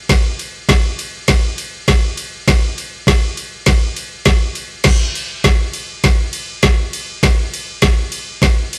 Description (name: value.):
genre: rock.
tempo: 101 BPM.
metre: 4/4.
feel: straight.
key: none.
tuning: none.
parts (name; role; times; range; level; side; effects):
garage drum kit; drums; 0.1-8.8 s; crash cymbal, kick drum, ride cymbal, snare drum; -16 LUFS; equal; overdrive.
room: light reverb.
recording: rough rehearsal-room recording, warm saturation.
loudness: -16 LUFS.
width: mono.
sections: 0.0-8.8 A section.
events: none.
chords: none.